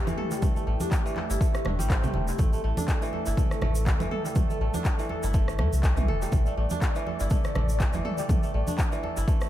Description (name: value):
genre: afro house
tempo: 122 BPM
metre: 4/4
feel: swing 57% on 16ths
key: A minor pentatonic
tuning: A4 = 440 Hz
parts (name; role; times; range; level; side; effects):
- warm analog pad; sustained chords; 0.0-9.5 s; A3 to D5; -36 LUFS; left 1 dB; chorus, sidechain pumping
- kora; arpeggios; 0.0-9.5 s; E3 to A4; -33 LUFS; right 2 dB; sidechain pumping, analog delay
- warm sub bass; bass; 0.1-9.2 s; E1 to E2; -27 LUFS; equal; tube saturation, sidechain pumping
- congas; percussion; 0.1-9.1 s; none; -34 LUFS; right 2 dB; analog delay
- egg shaker; percussion; 0.1-9.5 s; none; -42 LUFS; right 3 dB; none
- deep house drum kit; drums; 0.2-9.5 s; handclaps, rim click, toms; -35 LUFS; equal; analog delay
- electronic kick drum; drums; 0.4-9.4 s; none; -25 LUFS; equal; none
room: little or no reverb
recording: echo-heavy mix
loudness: -24 LUFS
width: side -13 dB against mid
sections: 0.0-9.5 A section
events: none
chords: 0.0 Am7